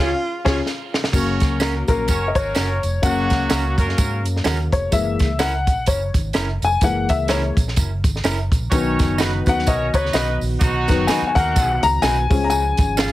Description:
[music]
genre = uptempo 1960s-style soul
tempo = 127 BPM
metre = 4/4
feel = swing 58% on 8ths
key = F# major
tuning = A4 = 439 Hz
[part]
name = breathy tenor saxophone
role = melody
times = 0.0-0.7 s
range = E#4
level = -27 LUFS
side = right 2 dB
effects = plate reverb, tape echo
[part]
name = clear horn section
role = second line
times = 0.0-4.2, 8.7-11.8 s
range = F#3 to C#5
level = -26 LUFS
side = right 2 dB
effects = none
[part]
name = dark upright piano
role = accompaniment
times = 0.0-13.1 s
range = C#3 to A#5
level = -21 LUFS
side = left 4 dB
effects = none
[part]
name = electric guitar through a small old amp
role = stabs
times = 0.0-13.1 s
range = C#4 to B4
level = -29 LUFS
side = right 4 dB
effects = plate reverb, tape echo
[part]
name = vintage muted fingered electric bass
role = bass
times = 0.0-13.1 s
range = E#1 to G#2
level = -23 LUFS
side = equal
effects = none
[part]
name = compact cocktail drum kit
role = drums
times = 0.5-13.1 s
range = crash cymbal, hi-hat, kick drum, snare drum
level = -20 LUFS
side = equal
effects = none
[part]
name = tambourine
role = percussion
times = 1.1-13.1 s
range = none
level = -34 LUFS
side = right 5 dB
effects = none
[part]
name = mellow tonewheel organ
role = sustained chords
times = 8.7-13.1 s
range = D#3 to G#4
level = -28 LUFS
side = right 1 dB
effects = slow rotary speaker
[sound]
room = light reverb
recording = heavily compressed radio sound, multiband compression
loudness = -17 LUFS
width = side -15 dB against mid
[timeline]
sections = 0.0-1.1 A section; 1.1-13.1 B section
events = band accent 0.0-1.1; drum fill 0.7-1.1; upright piano solo 1.1-13.1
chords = 0.0 C#; 1.1 F#; 4.9 F#7; 8.7 B; 12.3 C#

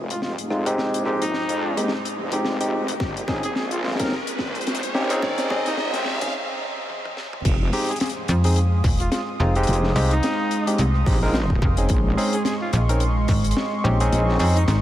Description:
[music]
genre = glitch hop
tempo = 108 BPM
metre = 4/4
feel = swing 57% on 16ths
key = F minor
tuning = A4 = 440 Hz
[part]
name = warm analog pad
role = sustained chords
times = 0.0-14.8 s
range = Ab3 to Eb6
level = -30 LUFS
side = equal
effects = chorus, sidechain pumping
[part]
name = wobble bass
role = bass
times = 0.0-14.4 s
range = F1 to F2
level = -26 LUFS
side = equal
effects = chorus, high-pass filter
[part]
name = riser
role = sound effects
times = 2.0-6.3 s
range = none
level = -32 LUFS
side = equal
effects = none
[part]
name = dark trumpet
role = melody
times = 0.1-14.8 s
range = C4 to Ab4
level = -31 LUFS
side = equal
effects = vintage 12-bit sampler grit, tape echo
[part]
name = deep reggae drum kit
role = drums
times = 0.1-14.8 s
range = crash cymbal, hi-hat, rim click, snare drum, toms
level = -29 LUFS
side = left 1 dB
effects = none
[part]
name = barky tine electric piano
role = stabs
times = 0.5-14.6 s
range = Ab3 to Bb4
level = -26 LUFS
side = equal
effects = sidechain pumping, low-pass filter, tape echo
[part]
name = electronic kick drum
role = drums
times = 3.0-13.4 s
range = none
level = -23 LUFS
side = equal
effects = none
[part]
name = slap-like FM bass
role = bass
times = 8.3-14.8 s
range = Eb1 to F2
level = -19 LUFS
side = equal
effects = none
[sound]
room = moderate huge ambient reverb, RT60 8.4 s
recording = dreamy mix soaked in reverb, vinyl crackle, high-pass filter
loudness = -20 LUFS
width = side -13 dB against mid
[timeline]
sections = 0.0-7.4 A section; 7.4-14.8 B section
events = build-up 0.0-7.4; drum fill 0.0-6.3, 6.9-7.4; filter sweep on tine electric piano 0.0-7.4; filter sweep on analog synth pad 0.0-7.4; filter sweep 0.0-7.4; riser 2.0-6.3; break 6.3-7.4; drop 7.4-14.8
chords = 0.0 Fm7; 3.0 Bbm11; 7.4 Fm7; 11.9 Bbm11

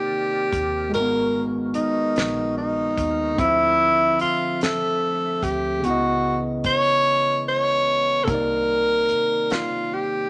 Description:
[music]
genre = slow six-eight R&B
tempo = 49 BPM (dotted quarters)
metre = 6/8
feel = straight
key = unclear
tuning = A4 = 440 Hz
[part]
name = breathy tenor saxophone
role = melody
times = 0.0-10.3 s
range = Eb4 to Db5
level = -23 LUFS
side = equal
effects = none
[part]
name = overdriven tine electric piano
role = accompaniment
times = 0.0-10.3 s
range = C3 to E5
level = -30 LUFS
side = equal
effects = none
[part]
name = tonewheel organ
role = sustained chords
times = 0.0-10.3 s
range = Db3 to E5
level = -38 LUFS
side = equal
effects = overdrive, chorus vibrato, slow rotary speaker
[part]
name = vintage muted fingered electric bass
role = bass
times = 0.5-9.1 s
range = Ab1 to Eb2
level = -37 LUFS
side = equal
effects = none
[part]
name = damped 70s drum kit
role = drums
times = 0.5-9.7 s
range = hi-hat, kick drum, snare drum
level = -30 LUFS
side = equal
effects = none
[sound]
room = moderate studio reverb, RT60 0.9 s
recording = none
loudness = -22 LUFS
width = mono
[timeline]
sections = 0.0-10.3 A section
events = silent gap 7.1-8.3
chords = 0.0 Cm9; 0.9 Abm9; 3.4 Dm9; 5.8 Dbm9; 8.3 Cm9

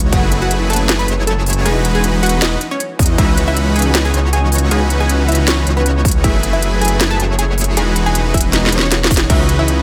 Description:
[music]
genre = future bass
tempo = 157 BPM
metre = 4/4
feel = half-time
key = C# minor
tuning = A4 = 439 Hz
[part]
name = unison pluck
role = melody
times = 0.0-9.8 s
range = B3 to B5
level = -24 LUFS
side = equal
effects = sidechain pumping, delay
[part]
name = shimmering ambient pad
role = sustained chords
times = 0.1-9.8 s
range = C#3 to G#4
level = -31 LUFS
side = equal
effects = none
[part]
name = supersaw chords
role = riff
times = 0.0-9.8 s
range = E3 to D#5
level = -22 LUFS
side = equal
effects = sidechain pumping
[part]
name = detuned saw bass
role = bass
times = 0.0-9.8 s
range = E1 to E2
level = -18 LUFS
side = equal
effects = chorus, sidechain pumping
[part]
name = trap drum kit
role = drums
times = 0.0-9.8 s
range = crash cymbal, hi-hat, snare drum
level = -20 LUFS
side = equal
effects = studio reverb
[part]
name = electronic kick drum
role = drums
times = 0.1-0.2, 3.0-3.3, 6.0-9.4 s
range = none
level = -18 LUFS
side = equal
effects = overdrive, studio reverb
[sound]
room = light reverb, digital ambience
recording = none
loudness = -14 LUFS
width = mono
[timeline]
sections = 0.0-9.8 A section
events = drum fill 8.5-9.3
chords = 0.1 F#m11; 1.7 Emaj9; 3.2 C#m11; 6.2 F#m11; 7.8 Emaj9; 9.3 C#m11

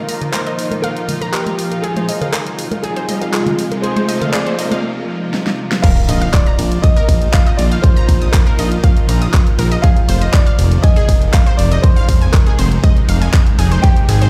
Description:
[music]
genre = progressive house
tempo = 120 BPM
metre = 4/4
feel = straight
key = unclear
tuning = A4 = 440 Hz
[part]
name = warm grand piano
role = melody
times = 0.0-14.3 s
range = F4 to G5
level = -26 LUFS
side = equal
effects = tape echo
[part]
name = shimmering ambient pad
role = sustained chords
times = 0.0-14.3 s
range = Bb2 to F4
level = -26 LUFS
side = equal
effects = chorus, built-in reverb, sidechain pumping
[part]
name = unison pluck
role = arpeggios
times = 0.0-14.3 s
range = G4 to Bb6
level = -28 LUFS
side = equal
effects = sidechain pumping, tape echo
[part]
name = riser and impact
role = sound effects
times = 1.4-7.8 s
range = none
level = -27 LUFS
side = equal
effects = none
[part]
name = deep house drum kit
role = drums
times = 0.1-14.3 s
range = crash cymbal, handclaps, hi-hat, ride cymbal, snare drum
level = -26 LUFS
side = equal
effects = none
[part]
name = bongos and congas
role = percussion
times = 0.2-4.8 s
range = none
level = -26 LUFS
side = equal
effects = overdrive, sidechain pumping on perc
[part]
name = electronic kick drum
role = drums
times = 5.8-13.9 s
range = none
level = -13 LUFS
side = equal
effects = overdrive
[part]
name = fat analog bass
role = bass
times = 6.1-14.3 s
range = F1 to Bb1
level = -17 LUFS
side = equal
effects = sidechain pumping
[sound]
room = light reverb, digital ambience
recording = played on a big sound system in a bare room, large studio reverb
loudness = -14 LUFS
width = mono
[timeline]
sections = 0.0-5.8 A section; 5.8-14.3 B section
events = build-up 0.0-5.8; riser 1.4-4.8; break 4.8-5.8; drum fill 5.3-5.8; drop 5.8-14.3; impact 5.8-7.8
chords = 0.0 Bbsus4; 1.8 Fm7; 5.8 Bbsus4; 9.8 Fm7

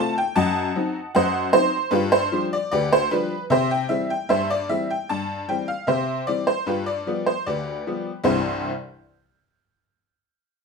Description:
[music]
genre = ragtime piano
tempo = 76 BPM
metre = 2/4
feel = straight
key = C major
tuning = A4 = 441 Hz
[part]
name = tack piano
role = solo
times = 0.0-8.7 s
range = C2 to A5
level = -20 LUFS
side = equal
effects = none
[sound]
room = moderate studio reverb, RT60 0.7 s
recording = minimal, uncompressed stereo recording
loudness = -20 LUFS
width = side -4 dB against mid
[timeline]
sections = 0.0-8.3 A section; 8.3-9.8 B section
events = none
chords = 0.3 F#dim7; 1.9 G7; 3.5 C/G; 6.7 G7; 8.3 C

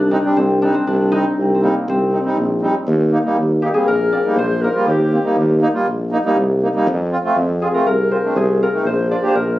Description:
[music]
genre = klezmer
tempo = 120 BPM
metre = 4/4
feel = straight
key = Eb major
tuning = A4 = 441 Hz
[part]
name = concert harp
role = melody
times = 0.0-9.6 s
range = Bb3 to D5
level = -20 LUFS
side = left 2 dB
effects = none
[part]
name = mellow clarinet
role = second line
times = 0.0-9.6 s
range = Bb3 to D5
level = -25 LUFS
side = left 1 dB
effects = none
[part]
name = warm tuba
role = bass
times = 0.0-9.6 s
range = Bb1 to F2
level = -17 LUFS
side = equal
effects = none
[part]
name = mellow accordion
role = accompaniment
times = 0.1-9.4 s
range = G3 to G4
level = -19 LUFS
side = right 1 dB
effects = none
[sound]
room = light reverb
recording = recorded on a phone in the room, club reverb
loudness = -14 LUFS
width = side -16 dB against mid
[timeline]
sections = 0.0-2.9 A section; 2.9-9.6 B section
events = none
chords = 0.0 Cm; 2.9 Eb; 6.9 F; 8.9 Bb

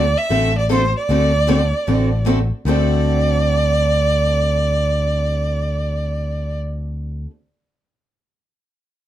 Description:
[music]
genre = acoustic string swing (jazz manouche)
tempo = 153 BPM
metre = 4/4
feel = swing 63% on 8ths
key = D mixolydian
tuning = A4 = 440 Hz
[part]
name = clear violin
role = melody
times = 0.0-6.6 s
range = C5 to E5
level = -20 LUFS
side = right 2 dB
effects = none
[part]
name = picked steel-string acoustic guitar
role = accompaniment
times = 0.0-7.3 s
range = D3 to A4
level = -23 LUFS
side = left 2 dB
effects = none
[part]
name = picked steel-string acoustic guitar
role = accompaniment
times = 0.0-7.3 s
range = D3 to A4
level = -28 LUFS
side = right 3 dB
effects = none
[part]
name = picked electric bass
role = bass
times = 0.0-7.3 s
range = A1 to D2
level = -19 LUFS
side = equal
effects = none
[sound]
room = light reverb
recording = dark, warm production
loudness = -16 LUFS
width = side -12 dB against mid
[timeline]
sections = 0.0-2.7 A section; 2.7-5.8 B section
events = none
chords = 0.0 D7

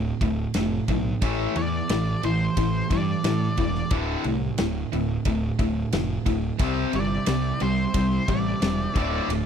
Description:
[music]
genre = classic rock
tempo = 89 BPM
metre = 4/4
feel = straight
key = D minor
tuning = A4 = 439 Hz
[part]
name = overdriven electric guitar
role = riff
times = 0.0-9.5 s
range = D2 to C4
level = -28 LUFS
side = left 12 dB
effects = none
[part]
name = tight distorted guitar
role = riff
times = 0.0-9.5 s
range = D2 to C4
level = -28 LUFS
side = right 11 dB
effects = distortion
[part]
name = fuzz picked electric bass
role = bass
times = 0.0-9.5 s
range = D1 to A2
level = -28 LUFS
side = equal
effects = overdrive
[part]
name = huge arena drum kit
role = drums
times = 0.2-9.5 s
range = kick drum, ride cymbal, snare drum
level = -29 LUFS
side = equal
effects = none
[part]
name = octave-fuzz lead guitar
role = melody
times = 1.6-9.3 s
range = C5 to D5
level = -30 LUFS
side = equal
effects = distortion, slapback echo
[part]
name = tonewheel organ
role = sustained chords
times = 6.6-9.5 s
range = E4 to F5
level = -38 LUFS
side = equal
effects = slow rotary speaker, overdrive
[sound]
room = studio reverb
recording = dry, close 1970s-style studio recording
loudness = -22 LUFS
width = side -8 dB against mid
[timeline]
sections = 0.0-9.5 A section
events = lead electric guitar solo 0.0-9.5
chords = 0.0 Dm; 1.2 Am; 3.9 D5; 6.6 C

